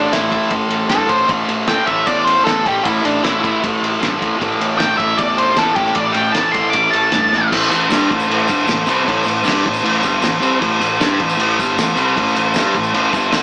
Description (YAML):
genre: garage rock duo or trio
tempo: 154 BPM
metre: 4/4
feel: straight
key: A minor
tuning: A4 = 440 Hz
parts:
  - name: octave-fuzz lead guitar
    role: melody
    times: 0.0-7.5 s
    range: D4 to D6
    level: -16 LUFS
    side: equal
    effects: distortion
  - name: combo organ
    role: sustained chords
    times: 0.0-13.4 s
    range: E4 to D5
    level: -22 LUFS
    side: equal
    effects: none
  - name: fuzz guitar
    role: riff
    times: 0.0-13.4 s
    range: G2 to G4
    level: -19 LUFS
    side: equal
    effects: distortion
  - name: growling picked electric bass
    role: bass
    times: 0.0-13.4 s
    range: G1 to A2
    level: -25 LUFS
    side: equal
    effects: overdrive
  - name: cloth-damped thuddy drum kit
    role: drums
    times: 0.1-13.4 s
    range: crash cymbal, kick drum, ride cymbal, snare drum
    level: -19 LUFS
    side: equal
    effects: none
  - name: tambourine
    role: percussion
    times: 7.5-13.4 s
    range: none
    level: -33 LUFS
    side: left 1 dB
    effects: none
room: light reverb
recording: band playing live in one room, small speaker sound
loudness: -13 LUFS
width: side -24 dB against mid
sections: 0.0-7.5 A section; 7.5-13.4 B section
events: drum fill 7.3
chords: 0.0 Am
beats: 0.12 0.51 0.90 | 1.29 1.68 2.07 2.46 | 2.85 3.24 3.63 4.02 | 4.41 4.80 5.19 5.58 | 5.97 6.36 6.75 7.13 | 7.52 7.91 8.30 8.68 | 9.07 9.46 9.84 10.23 | 10.62 11.00 11.39 11.77 | 12.16 12.55 12.94 13.32